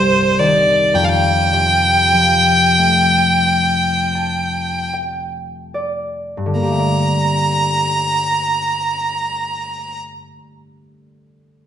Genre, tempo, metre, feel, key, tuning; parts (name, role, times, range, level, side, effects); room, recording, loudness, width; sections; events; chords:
celtic folk, Celtic slow air; 35-56 BPM; 4/4; rubato; G minor; A4 = 440 Hz
clear fiddle; melody; 0.0-10.0 s; C5 to Bb5; -15 LUFS; equal
concert harp; accompaniment; 0.0-10.4 s; C2 to A5; -19 LUFS; left 1 dB
wet recital hall reverb, RT60 1.2 s; recorded in a church or concert hall, nothing above 11.0 kHz; -13 LUFS; side -9 dB against mid
0.0-6.6 A section; 6.6-11.7 B section
slowing down 0.0-6.6; harp fill 3.5-6.6
0.0 Cm; 1.0 Fadd9; 6.6 Gmadd9